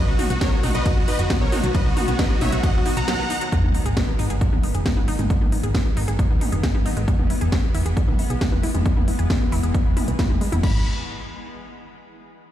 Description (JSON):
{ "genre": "uplifting trance", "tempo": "135 BPM", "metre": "4/4", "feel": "straight", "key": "G# minor", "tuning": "A4 = 435 Hz", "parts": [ { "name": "supersaw chords", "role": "melody", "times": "0.0-3.4, 10.6-10.8 s", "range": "F#4 to B5", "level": "-28 LUFS", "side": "equal", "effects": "cassette tape, sidechain pumping, ping-pong delay" }, { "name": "wide unison pluck", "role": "second line", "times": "0.0-3.4 s", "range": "F#4 to A#5", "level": "-32 LUFS", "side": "equal", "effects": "ensemble chorus, sidechain pumping, ping-pong delay" }, { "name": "shimmering ambient pad", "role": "sustained chords", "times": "0.1-10.8 s", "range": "D#3 to B3", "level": "-31 LUFS", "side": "left 1 dB", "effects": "chorus, built-in reverb, sidechain pumping" }, { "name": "wide unison pluck", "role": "arpeggios", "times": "0.0-10.8 s", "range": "F#3 to G#4", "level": "-31 LUFS", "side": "left 1 dB", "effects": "sidechain pumping, ping-pong delay" }, { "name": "solid FM bass", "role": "bass", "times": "0.1-10.8 s", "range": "E1 to D#2", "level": "-23 LUFS", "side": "equal", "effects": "sidechain pumping" }, { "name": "techno drum kit", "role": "drums", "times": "0.2-10.7 s", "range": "crash cymbal, hi-hat, ride cymbal, snare drum, toms", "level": "-28 LUFS", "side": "equal", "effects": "none" }, { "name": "electronic kick drum", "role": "drums", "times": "0.4-10.7 s", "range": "none", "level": "-21 LUFS", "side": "equal", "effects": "none" }, { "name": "sub drop", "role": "sound effects", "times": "3.5-5.3 s", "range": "none", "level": "-27 LUFS", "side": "equal", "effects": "none" } ], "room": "digital ambience", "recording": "played on a big sound system in a bare room, large studio reverb", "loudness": "-18 LUFS", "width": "side -12 dB against mid", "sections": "0.0-3.5 A section; 3.5-10.6 B section; 10.6-12.4 C section", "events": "drop 0.0-3.5; break 3.1-3.5; impact 3.5-5.3; filter sweep on FM bass 3.5-10.6; filter sweep on synth arpeggio sound 3.5-10.6", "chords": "0.0 B; 3.5 G#m; 7.1 E; 10.6 G#m" }